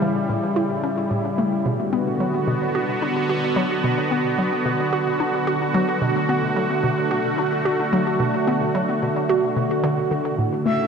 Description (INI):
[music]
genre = ambient, sequencer-driven space music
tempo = 110 BPM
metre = 4/4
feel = straight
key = B minor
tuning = A4 = 444 Hz
[part]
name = sweeping resonant pad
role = sustained chords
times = 0.0-10.9 s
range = C#3 to F#4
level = -21 LUFS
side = right 1 dB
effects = chorus
[part]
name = hollow square pluck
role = riff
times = 0.0-10.8 s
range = A2 to F#4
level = -24 LUFS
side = left 1 dB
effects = chorus, ping-pong delay
[part]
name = breathy flute-like synth lead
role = melody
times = 10.7-10.9 s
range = E5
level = -22 LUFS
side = left 2 dB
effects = wide subtle chorus
[sound]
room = wet cathedral reverb, RT60 6.6 s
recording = in a vast, echoing space, cassette tape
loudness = -19 LUFS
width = side -6 dB against mid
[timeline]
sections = 0.0-10.9 A section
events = none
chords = 0.0 A; 1.7 Bm